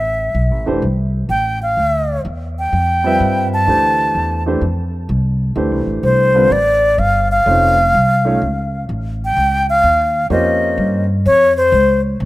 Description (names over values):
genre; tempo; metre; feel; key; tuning
modal jazz; 127 BPM; 4/4; swing 67% on 8ths; D dorian; A4 = 436 Hz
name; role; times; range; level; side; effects
breathy bright concert flute; melody; 0.0-12.0 s; C5 to A5; -14 LUFS; left 1 dB; none
upright bass; bass; 0.0-12.3 s; F1 to G2; -18 LUFS; equal; none
warm baby grand piano; accompaniment; 0.7-11.0 s; D3 to E5; -20 LUFS; right 1 dB; none
room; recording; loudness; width
light reverb, studio reverb; rough home demo mix; -13 LUFS; side -17 dB against mid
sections
0.0-9.4 A section; 9.4-12.3 B section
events
none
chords
0.0 Dm11; 7.5 F7b13; 9.4 Bbm69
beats
0.35 0.83 1.30 | 1.77 2.25 2.72 3.20 | 3.67 4.14 4.62 5.09 | 5.56 6.04 6.51 6.99 | 7.46 7.93 8.41 8.88 | 9.35 9.83 10.30 10.77 | 11.25 11.72 12.19